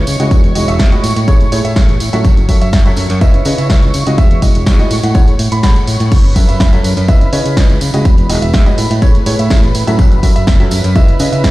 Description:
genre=piano house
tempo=124 BPM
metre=4/4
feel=straight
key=F# dorian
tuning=A4 = 442 Hz
part: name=analog string pad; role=sustained chords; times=0.0-11.5 s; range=B4 to C#6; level=-25 LUFS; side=right 1 dB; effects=ensemble chorus, sidechain pumping
part: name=fingered electric bass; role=bass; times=0.0-11.5 s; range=E1 to C#3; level=-15 LUFS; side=equal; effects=tube saturation, sidechain pumping
part: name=punchy analog drum machine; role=drums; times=0.1-11.5 s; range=crash cymbal, hi-hat, snare drum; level=-21 LUFS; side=equal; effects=none
part: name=tambourine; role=percussion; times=0.1-11.5 s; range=none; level=-29 LUFS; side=right 2 dB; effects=none
part: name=warm upright piano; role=riff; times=0.2-11.5 s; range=A2 to F#5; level=-18 LUFS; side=right 1 dB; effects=sidechain pumping, digital delay
part: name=electronic kick drum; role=drums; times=0.3-11.5 s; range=none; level=-10 LUFS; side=equal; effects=none
part: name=dark baby grand piano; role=melody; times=0.7-11.5 s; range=C#5 to B5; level=-24 LUFS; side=right 2 dB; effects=digital delay
room=little or no reverb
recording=played on a big sound system in a bare room, stone room reverb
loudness=-9 LUFS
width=side -18 dB against mid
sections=0.0-11.5 A section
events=none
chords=0.3 Emaj9; 1.0 Amaj7; 2.2 F#m7; 3.2 C#m9; 4.2 Emaj9; 4.9 Amaj7; 6.1 F#m7; 7.1 C#m9; 8.1 Emaj9; 8.8 Amaj7; 10.0 F#m7; 11.0 C#m9

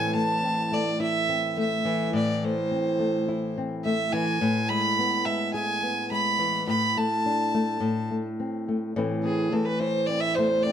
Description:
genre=folk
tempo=106 BPM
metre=4/4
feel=straight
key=A harmonic minor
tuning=A4 = 443 Hz
part: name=warm fiddle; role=melody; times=0.0-10.7 s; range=G#4 to B5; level=-26 LUFS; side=right 2 dB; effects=slapback echo
part: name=nylon-string guitar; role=accompaniment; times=0.0-10.7 s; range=E2 to G#4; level=-26 LUFS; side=left 2 dB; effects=none
room=moderate studio reverb, RT60 0.7 s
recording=none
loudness=-23 LUFS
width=side -9 dB against mid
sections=0.0-9.0 A section; 9.0-10.7 B section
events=fiddle solo 9.0-10.7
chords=0.0 Am; 4.4 E/A; 6.7 D5/A; 7.8 Am

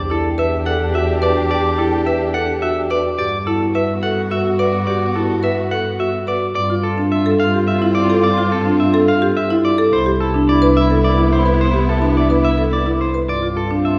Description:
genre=classical, minimalist pattern music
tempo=107 BPM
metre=3/4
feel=straight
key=G mixolydian from 6.6 s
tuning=A4 = 440 Hz
part: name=bright clarinet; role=second line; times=0.0-14.0 s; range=E4 to G4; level=-27 LUFS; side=equal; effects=none
part: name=warm studio string section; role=sustained chords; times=0.0-14.0 s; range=B3 to G4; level=-27 LUFS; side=equal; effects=none
part: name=warm double bass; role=bass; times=0.0-14.0 s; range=C2 to G2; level=-23 LUFS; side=equal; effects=none
part: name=clean electric guitar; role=melody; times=0.1-14.0 s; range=A4 to F#5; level=-24 LUFS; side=equal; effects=none
part: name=marimba with medium hard mallets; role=arpeggios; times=0.1-13.9 s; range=D4 to B4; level=-21 LUFS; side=equal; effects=none
room=wet recital hall reverb, RT60 1.7 s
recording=heard from further back in the room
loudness=-17 LUFS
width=mono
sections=0.0-6.6 A section; 6.6-14.0 B section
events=none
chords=0.0 Em7; 3.2 Gmaj7; 6.6 G9sus4; 9.9 Cmaj9; 13.3 G9sus4

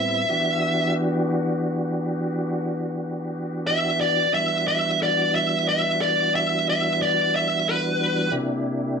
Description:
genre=blues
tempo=60 BPM (dotted quarters)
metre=12/8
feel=straight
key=E minor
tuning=A4 = 439 Hz
part: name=smooth overdriven lead guitar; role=melody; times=0.0-8.3 s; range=B4 to E5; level=-21 LUFS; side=right 1 dB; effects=none
part: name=tonewheel organ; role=sustained chords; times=0.0-9.0 s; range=A2 to G4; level=-25 LUFS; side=left 1 dB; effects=chorus vibrato, slow rotary speaker
room=wet large studio reverb, RT60 0.9 s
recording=band playing live in one room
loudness=-20 LUFS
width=side -6 dB against mid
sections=0.0-9.0 A section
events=lead electric guitar solo 0.0-9.0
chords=0.3 Em7; 8.3 C7

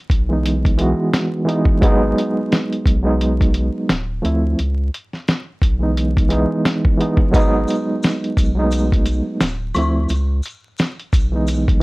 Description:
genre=lo-fi hip hop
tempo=87 BPM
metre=4/4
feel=swing 56% on 16ths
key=C# minor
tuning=A4 = 440 Hz
part: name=saturated sub bass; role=bass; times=0.1-11.8 s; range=D1 to D2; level=-20 LUFS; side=equal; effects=none
part: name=lo-fi sampler-style drum kit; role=drums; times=0.1-11.8 s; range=hi-hat, kick drum, snare drum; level=-17 LUFS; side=equal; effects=none
part: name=overdriven reed electric piano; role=accompaniment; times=0.3-11.8 s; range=E3 to F#4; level=-18 LUFS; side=right 1 dB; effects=fast tremolo, cassette tape
part: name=maracas and woodblock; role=percussion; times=7.3-11.7 s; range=none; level=-32 LUFS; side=left 3 dB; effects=none
room=light reverb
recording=vinyl crackle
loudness=-16 LUFS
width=side -22 dB against mid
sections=0.0-11.8 A section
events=none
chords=0.0 C#m9 (rootless); 1.8 G#m7; 3.9 Dm9; 4.6 C#m9 (rootless); 7.3 G#m7; 9.4 Dm9; 10.1 C#m9

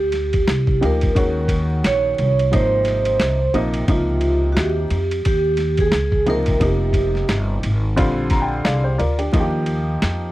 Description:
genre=hip hop, jazz-hop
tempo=88 BPM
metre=4/4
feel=swing 57% on 16ths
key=unclear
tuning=A4 = 441 Hz
part: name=vibraphone with medium mallets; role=melody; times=0.0-7.3 s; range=F4 to Db5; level=-20 LUFS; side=right 2 dB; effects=none
part: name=upright bass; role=bass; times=0.0-10.3 s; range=F1 to F2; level=-21 LUFS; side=equal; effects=none
part: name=boom bap sampler-style drum kit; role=drums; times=0.1-10.2 s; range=hi-hat, kick drum, ride cymbal, snare drum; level=-22 LUFS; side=equal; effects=none
part: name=warm upright piano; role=accompaniment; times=0.8-10.3 s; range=C3 to Bb5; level=-23 LUFS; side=equal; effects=none
room=little or no reverb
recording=dry, close 1970s-style studio recording, vinyl crackle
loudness=-16 LUFS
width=side -16 dB against mid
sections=0.0-10.3 A section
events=upright piano fill 8.0-9.3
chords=0.0 Cm11; 1.2 Ebm7; 2.5 Abadd9; 3.9 Db69; 6.6 Fm9; 8.0 Bb69; 9.3 Ebadd9

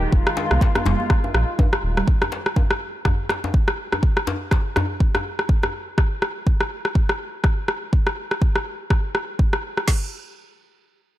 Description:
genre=afro house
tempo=123 BPM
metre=4/4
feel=swing 58% on 16ths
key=F minor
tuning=A4 = 438 Hz
part: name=warm studio string section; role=sustained chords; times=0.0-2.1 s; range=Eb3 to G4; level=-27 LUFS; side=left 1 dB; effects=sidechain pumping, low-pass filter
part: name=round analog bass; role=bass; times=0.0-2.0 s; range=Eb1 to C2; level=-21 LUFS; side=equal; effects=sidechain pumping
part: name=afro-pop drum kit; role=drums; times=0.1-10.0 s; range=crash cymbal, kick drum, snare drum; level=-18 LUFS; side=equal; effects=none
part: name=electronic rim click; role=drums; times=0.3-9.9 s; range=none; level=-24 LUFS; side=equal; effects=none
part: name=djembe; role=percussion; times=0.4-5.7 s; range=none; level=-28 LUFS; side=left 2 dB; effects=none
part: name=congas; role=percussion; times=0.5-2.1 s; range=none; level=-29 LUFS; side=right 5 dB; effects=none
room=light reverb, studio ambience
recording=none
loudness=-19 LUFS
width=side -14 dB against mid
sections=0.0-9.9 A section; 9.9-11.2 B section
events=filter sweep on string section 0.0-2.1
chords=0.0 Fm7; 2.1 N.C.

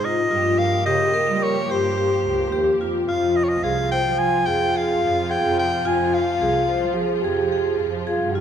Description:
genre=contemporary instrumental, chamber music in an uneven meter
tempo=108 BPM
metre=5/4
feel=straight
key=F minor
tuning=A4 = 440 Hz
part: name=clear soprano saxophone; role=melody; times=0.0-7.0 s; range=C5 to Ab5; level=-23 LUFS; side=left 1 dB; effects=none
part: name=rich studio string section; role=sustained chords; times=0.0-8.4 s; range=C3 to G4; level=-30 LUFS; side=equal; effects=none
part: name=vibraphone with medium hard mallets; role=arpeggios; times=0.0-8.4 s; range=F4 to C5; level=-23 LUFS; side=left 1 dB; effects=none
part: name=rich double bass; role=bass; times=0.0-8.4 s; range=C2 to G3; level=-27 LUFS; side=right 4 dB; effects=none
part: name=mellow French horn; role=second line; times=3.1-8.4 s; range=F4 to Ab4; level=-24 LUFS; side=equal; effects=none
room=wet concert hall reverb, RT60 2.0 s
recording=minimal, uncompressed stereo recording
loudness=-18 LUFS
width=side -8 dB against mid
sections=0.0-8.4 A section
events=none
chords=0.3 Gm7b5; 3.1 Fm

